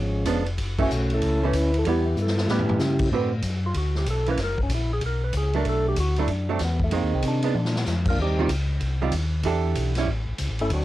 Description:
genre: soul jazz organ trio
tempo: 190 BPM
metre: 4/4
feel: swing 63% on 8ths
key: unclear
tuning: A4 = 440 Hz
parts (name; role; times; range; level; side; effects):
- percussive tonewheel organ; melody; 0.0-8.5, 10.6-10.8 s; E#3 to B4; -27 LUFS; equal; slow rotary speaker, cassette tape
- mellow tonewheel organ; bass; 0.0-10.8 s; E#1 to C#3; -25 LUFS; left 1 dB; slow rotary speaker
- archtop guitar, miked and amplified; accompaniment; 0.3-10.1 s; D3 to B4; -26 LUFS; right 6 dB; cassette tape
- swinging big-band drum kit; drums; 0.3-10.8 s; crash cymbal, hi-hat, kick drum, ride cymbal, snare drum, toms; -30 LUFS; left 1 dB; none
room: moderate booth ambience, RT60 0.2 s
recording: home recording on cassette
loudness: -22 LUFS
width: side -15 dB against mid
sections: 0.0-3.1 A section; 3.1-10.8 B section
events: band accent 0.8; drum fill 2.2-2.8, 7.6-7.9; tonewheel organ solo 3.1-10.8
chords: 0.0 C#7b9; 0.6 F#m7; 1.9 Emadd11; 2.5 A9; 3.1 D13; 4.4 F#; 5.7 Bm7; 6.9 Fm7; 7.6 Bb; 8.2 Eb69; 9.5 Em7; 10.1 A7

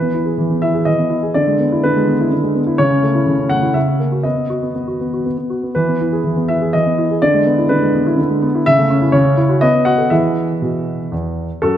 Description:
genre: classical-period piano sonatina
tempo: 123 BPM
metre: 3/4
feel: rubato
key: E major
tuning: A4 = 441 Hz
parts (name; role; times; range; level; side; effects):
- warm baby grand piano; solo; 0.0-11.8 s; E2 to F#5; -13 LUFS; equal; none
room: wet concert hall reverb, RT60 2.4 s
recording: none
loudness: -13 LUFS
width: side -10 dB against mid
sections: 0.0-11.6 A section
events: none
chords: 0.0 E; 1.4 E7/D; 2.8 A/C#; 3.8 F#7/C#; 4.3 B; 5.8 E; 7.2 E7/D; 8.7 A/C#; 9.1 F#5/C#; 9.6 B7; 10.1 E

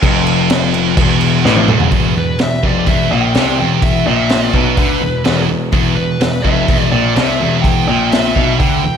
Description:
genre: hard rock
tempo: 126 BPM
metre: 4/4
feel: straight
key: E phrygian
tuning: A4 = 440 Hz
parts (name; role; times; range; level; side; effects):
- overdriven semi-hollow guitar; riff; 0.0-9.0 s; E2 to D3; -17 LUFS; left 10 dB; slapback echo
- scooped high-gain guitar; riff; 0.0-9.0 s; E2 to D3; -18 LUFS; right 11 dB; distortion, slapback echo
- warm grand piano; bass; 0.0-9.0 s; E1 to D2; -18 LUFS; right 1 dB; none
- raw garage drum kit; drums; 0.0-8.7 s; crash cymbal, hi-hat, kick drum, snare drum, toms; -16 LUFS; equal; none
- dark smooth lead guitar; melody; 2.2-9.0 s; B4 to G5; -20 LUFS; right 1 dB; overdrive, slapback echo
room: moderate lush hall reverb, RT60 1.6 s, small room ambience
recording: big arena sound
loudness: -11 LUFS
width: side -7 dB against mid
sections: 0.0-1.9 A section; 1.9-9.0 B section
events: drum fill 1.4-1.9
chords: 0.0 N.C.; 1.9 Em

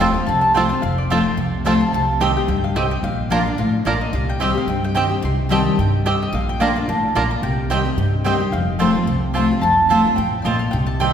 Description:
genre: bluegrass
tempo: 218 BPM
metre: 4/4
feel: swing 55% on 8ths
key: unclear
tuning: A4 = 440 Hz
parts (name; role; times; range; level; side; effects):
- bluegrass banjo; melody; 0.0-8.3 s; C4 to Bb4; -28 LUFS; right 2 dB; none
- mandolin; melody; 0.0-11.1 s; C5 to C6; -23 LUFS; equal; none
- picked steel-string acoustic guitar; accompaniment; 0.0-11.1 s; F2 to G4; -21 LUFS; left 3 dB; none
- mandolin; stabs; 0.0-11.1 s; Bb3 to Bb5; -23 LUFS; right 4 dB; none
- upright bass; bass; 0.0-11.1 s; F1 to G2; -23 LUFS; right 1 dB; none
room: wet concert hall reverb, RT60 2.3 s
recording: recorded in a church or concert hall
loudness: -16 LUFS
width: side -8 dB against mid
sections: 0.0-8.5 A section; 8.5-11.1 A section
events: none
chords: 0.0 F; 1.9 Cm; 3.0 Bb; 4.1 Cm; 6.3 Bb; 7.4 Cm; 8.5 F

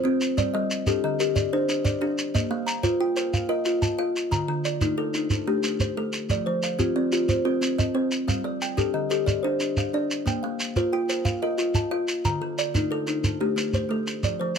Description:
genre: southern african traditional, mbira-style interlocking cycle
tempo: 121 BPM (dotted quarters)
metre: 12/8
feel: straight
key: Bb major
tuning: A4 = 442 Hz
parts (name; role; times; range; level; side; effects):
- kalimba; arpeggios; 0.0-14.6 s; D3 to G5; -26 LUFS; left 2 dB; none
- kalimba; arpeggios; 0.0-14.6 s; D3 to Bb5; -28 LUFS; right 2 dB; none
- shekere; percussion; 0.2-14.6 s; none; -26 LUFS; right 2 dB; none
room: light reverb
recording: none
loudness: -23 LUFS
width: side -6 dB against mid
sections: 0.0-2.3 A section; 2.3-14.6 A section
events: none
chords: 0.4 Gm; 2.3 Bb5; 4.3 D5; 6.3 F5; 8.3 G5; 10.3 Bb5; 12.2 D5

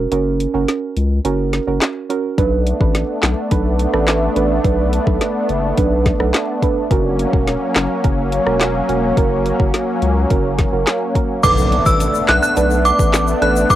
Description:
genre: dancehall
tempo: 106 BPM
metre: 4/4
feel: straight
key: B minor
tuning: A4 = 440 Hz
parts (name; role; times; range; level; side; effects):
- saturated sub bass; bass; 0.0-13.8 s; E1 to C#2; -19 LUFS; left 1 dB; none
- soft round pluck; accompaniment; 0.1-13.8 s; C#4 to B4; -20 LUFS; right 6 dB; chorus, cassette tape
- afro-pop drum kit; drums; 0.1-13.8 s; crash cymbal, handclaps, hi-hat, kick drum, rim click, snare drum; -18 LUFS; left 1 dB; cassette tape
- lush unison pad; sustained chords; 2.4-13.8 s; F#3 to D4; -20 LUFS; left 1 dB; chorus, sidechain pumping, cassette tape
- synth chime; melody; 11.4-13.8 s; D6 to F#6; -16 LUFS; equal; ensemble chorus, cassette tape, analog delay
- tube shaker; percussion; 11.4-13.8 s; none; -31 LUFS; left 11 dB; none
- impact; sound effects; 11.4-13.7 s; none; -25 LUFS; left 1 dB; none
room: light reverb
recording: home recording on cassette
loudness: -14 LUFS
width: side -13 dB against mid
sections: 0.0-11.4 A section; 11.4-13.8 B section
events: break 0.0-2.4; impact 11.4-13.7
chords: 0.0 F#; 2.4 Bm7; 6.9 F#; 11.4 Bm7

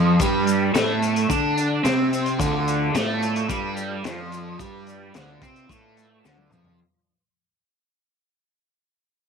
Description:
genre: psychedelic rock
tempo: 109 BPM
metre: 4/4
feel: straight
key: D dorian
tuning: A4 = 439 Hz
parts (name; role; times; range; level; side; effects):
- crunchy overdriven guitar; riff; 0.0-6.8 s; D3 to D4; -22 LUFS; right 1 dB; phaser
- fuzz fingered electric bass; bass; 0.0-6.8 s; D2 to D3; -28 LUFS; equal; overdrive
- crunchy breakbeat drum kit; drums; 0.2-6.8 s; hi-hat, kick drum, snare drum, toms; -28 LUFS; left 3 dB; none
- tube shaker; percussion; 0.2-6.6 s; none; -40 LUFS; left 12 dB; none
- mellow tonewheel organ; sustained chords; 2.4-6.8 s; F4 to D5; -36 LUFS; right 10 dB; overdrive, fast rotary speaker
room: light reverb, small room ambience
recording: 1960s-style stereo with parts hard left and right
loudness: -20 LUFS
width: side -6 dB against mid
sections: 0.0-6.8 A section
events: fade-out 0.0-6.8; drum fill 6.2-6.8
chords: 0.0 Dm

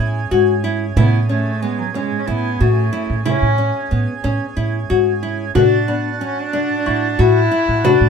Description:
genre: contemporary instrumental, chamber music in an uneven meter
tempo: 183 BPM (eighths)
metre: 7/8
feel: straight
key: A major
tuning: A4 = 440 Hz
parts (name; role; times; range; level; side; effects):
- hand-pumped harmonium; sustained chords; 0.0-8.1 s; C#4 to A5; -27 LUFS; right 5 dB; none
- nylon-string guitar; arpeggios; 0.0-8.1 s; B3 to F#4; -19 LUFS; left 6 dB; none
- upright bass; bass; 0.0-8.1 s; G#2 to A2; -19 LUFS; right 2 dB; none
- frame drum; percussion; 0.3-8.1 s; none; -23 LUFS; right 4 dB; none
- warm cello; melody; 1.0-8.1 s; F#3 to E4; -21 LUFS; right 2 dB; none
- worn celesta; texture; 6.9-8.1 s; B5 to C#6; -29 LUFS; left 4 dB; none
room: light reverb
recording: minimal, uncompressed stereo recording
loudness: -15 LUFS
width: side -6 dB against mid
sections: 0.0-8.1 A section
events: none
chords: 0.0 Amaj7; 5.5 D/A

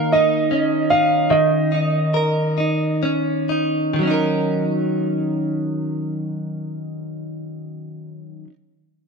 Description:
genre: six-eight pop ballad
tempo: 40-53 BPM (dotted quarters)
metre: 6/8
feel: straight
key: Eb minor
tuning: A4 = 440 Hz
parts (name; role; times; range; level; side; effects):
- clear grand piano; melody; 0.0-3.0 s; Eb5 to F5; -20 LUFS; right 3 dB; ping-pong delay
- direct-recorded clean electric guitar; accompaniment; 0.0-8.5 s; Eb3 to Bb4; -20 LUFS; equal; double-tracked left and right
room: moderate echo chamber reverb, RT60 1.6 s, small room ambience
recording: none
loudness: -18 LUFS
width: side -4 dB against mid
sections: 0.0-4.0 A section; 4.0-7.0 B section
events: slowing down 0.0-4.0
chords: 0.0 Eb5; 4.0 Ebm7

